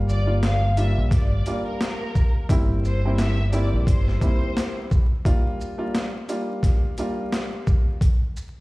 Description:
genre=hip hop, boom-bap hip-hop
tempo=87 BPM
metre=4/4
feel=swing 59% on 16ths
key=G dorian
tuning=A4 = 441 Hz
part: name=dark upright piano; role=accompaniment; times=0.0-8.0 s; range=G3 to F4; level=-28 LUFS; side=equal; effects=high-pass filter, low-pass filter
part: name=deep dub fingered electric bass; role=bass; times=0.0-4.2 s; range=G1 to Bb1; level=-21 LUFS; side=equal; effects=none
part: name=warm studio violin section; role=melody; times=0.1-4.7 s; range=Bb4 to F5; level=-31 LUFS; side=left 1 dB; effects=high-pass filter, low-pass filter, slapback echo
part: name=boom bap sampler-style drum kit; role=drums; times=0.1-8.6 s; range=hi-hat, kick drum, shaker, snare drum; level=-21 LUFS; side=equal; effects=overdrive
room=little or no reverb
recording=played on a big sound system in a bare room, large studio reverb, vinyl crackle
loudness=-20 LUFS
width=side -21 dB against mid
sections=0.0-8.6 A section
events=none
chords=0.0 Gm7; 2.5 C7/G; 5.3 Gm7; 8.0 N.C.

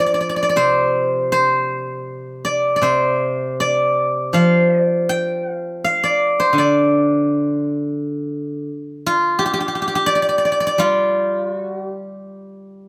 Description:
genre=chinese traditional, Chinese solo plucked strings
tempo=83 BPM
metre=4/4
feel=rubato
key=unclear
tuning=A4 = 438 Hz
part: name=steel-string zither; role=solo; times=0.0-12.9 s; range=C3 to G5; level=-19 LUFS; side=equal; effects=none
room=light reverb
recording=close, detailed microphones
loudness=-18 LUFS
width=mono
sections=0.0-12.9 A section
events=none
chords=none

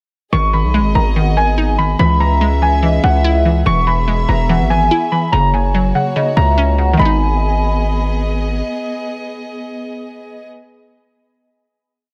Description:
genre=hip hop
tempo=144 BPM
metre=4/4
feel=half-time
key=G# minor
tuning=A4 = 443 Hz
part: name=muted felt-like synth keys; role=melody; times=0.3-8.2 s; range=F#5 to C#6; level=-21 LUFS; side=equal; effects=chorus, low-pass filter, delay
part: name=hollow square pluck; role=accompaniment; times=0.3-10.5 s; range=C#3 to E4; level=-21 LUFS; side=equal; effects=chorus, low-pass filter
part: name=dark chamber string section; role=sustained chords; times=0.3-10.5 s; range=A#3 to E5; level=-26 LUFS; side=equal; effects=none
part: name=distorted 808-style bass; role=bass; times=0.3-8.6 s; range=E1 to C#2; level=-18 LUFS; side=equal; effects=distortion
part: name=hollow clarinet-like synth lead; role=second line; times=1.2-8.2 s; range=D#5 to G#5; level=-25 LUFS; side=equal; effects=chorus, delay
room=light reverb, digital ambience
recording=none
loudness=-15 LUFS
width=mono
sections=0.3-7.0 hook; 7.0-10.3 final chord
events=none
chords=0.3 G#m; 2.0 C#m; 3.7 E; 5.3 F#; 7.0 G#m

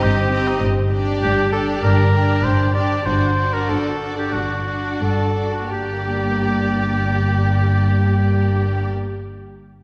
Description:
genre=quick classical-period movement for symphony orchestra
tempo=84-101 BPM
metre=4/4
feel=rubato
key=G minor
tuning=A4 = 440 Hz
part: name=rich studio violin section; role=melody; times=0.0-8.9 s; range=D5 to Eb5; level=-36 LUFS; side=equal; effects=none
part: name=rich studio violin section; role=second line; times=0.0-8.9 s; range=F#4 to G4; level=-30 LUFS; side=equal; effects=none
part: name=warm oboe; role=second line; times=0.0-8.9 s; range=Eb4 to D5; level=-26 LUFS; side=equal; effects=none
part: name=rich studio viola section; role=accompaniment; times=0.0-8.9 s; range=Bb3 to D4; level=-28 LUFS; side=equal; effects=none
part: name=rich studio cello section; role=bass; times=0.0-8.9 s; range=G2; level=-24 LUFS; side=equal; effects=none
part: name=rich studio double bass section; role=bass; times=0.0-8.9 s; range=G1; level=-26 LUFS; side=equal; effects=none
room=wet scoring stage reverb, RT60 2.0 s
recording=heard from further back in the room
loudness=-19 LUFS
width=mono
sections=0.0-5.7 A section; 5.7-8.4 B section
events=slowing down 0.0-5.7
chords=0.0 Cm/G; 0.6 Gm

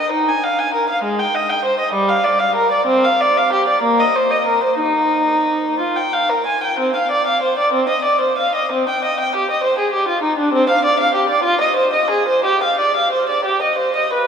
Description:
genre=classical, baroque-style suite movement for unaccompanied violin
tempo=57-68 BPM (dotted quarters)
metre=6/8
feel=rubato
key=Eb major, C minor from 6.8 s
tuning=A4 = 439 Hz
part: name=dark violin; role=solo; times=0.0-14.3 s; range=G3 to Ab5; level=-14 LUFS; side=equal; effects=none
room=wet cathedral reverb, RT60 6.9 s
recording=recorded in a church or concert hall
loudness=-14 LUFS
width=side -7 dB against mid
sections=0.0-6.8 A section; 6.8-14.3 A section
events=none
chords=none

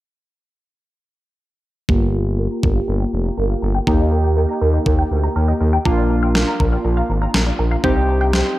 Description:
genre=synth-pop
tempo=121 BPM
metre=4/4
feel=straight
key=unclear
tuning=A4 = 440 Hz
part: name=warm analog keys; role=accompaniment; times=1.9-8.6 s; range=Bb3 to G4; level=-21 LUFS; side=right 1 dB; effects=chorus, low-pass filter, dub echo
part: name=resonant blip pluck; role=arpeggios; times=1.9-8.5 s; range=Bb4 to C6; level=-25 LUFS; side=equal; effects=phaser, low-pass filter, dub echo
part: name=smooth synth bass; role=bass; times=1.9-8.4 s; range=F1 to Eb2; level=-18 LUFS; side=equal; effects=none
part: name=clean 12-bit digital drum machine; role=drums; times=1.9-8.4 s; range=kick drum, snare drum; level=-19 LUFS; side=equal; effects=overdrive
room=light reverb, digital ambience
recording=echo-heavy mix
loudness=-15 LUFS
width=side -16 dB against mid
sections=1.9-8.6 A section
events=filter sweep 1.9-8.6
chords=1.9 Gm7; 3.9 Eb; 5.9 Bb; 7.8 Cm

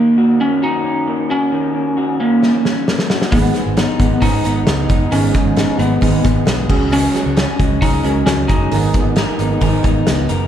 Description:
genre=jangly indie pop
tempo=133 BPM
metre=4/4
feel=straight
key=G# minor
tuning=A4 = 440 Hz
part: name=lightly driven lead guitar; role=melody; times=0.0-10.2 s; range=A#3 to D#4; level=-17 LUFS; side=equal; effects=none
part: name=electric guitar through a small old amp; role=arpeggios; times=0.0-10.5 s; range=G#2 to A#4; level=-21 LUFS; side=left 4 dB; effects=none
part: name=loose indie drum kit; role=drums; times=2.4-10.4 s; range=crash cymbal, hi-hat, kick drum, snare drum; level=-17 LUFS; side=equal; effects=none
part: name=picked steel-string acoustic guitar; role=accompaniment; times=3.3-10.5 s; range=G#2 to G#4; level=-23 LUFS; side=right 5 dB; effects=none
part: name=reed electric piano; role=accompaniment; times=3.3-10.5 s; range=G#3 to A#4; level=-25 LUFS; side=right 4 dB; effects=fast tremolo
part: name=vintage muted fingered electric bass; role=bass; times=3.3-10.5 s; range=F#1 to C#2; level=-19 LUFS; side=right 1 dB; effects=none
room=moderate concert hall reverb, RT60 1.9 s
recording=recorded in a church or concert hall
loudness=-13 LUFS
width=side -10 dB against mid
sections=0.0-10.5 A section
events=drum fill 2.4-3.3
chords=0.0 D#m7; 3.3 G#m; 6.7 C#sus4; 8.7 G#madd9

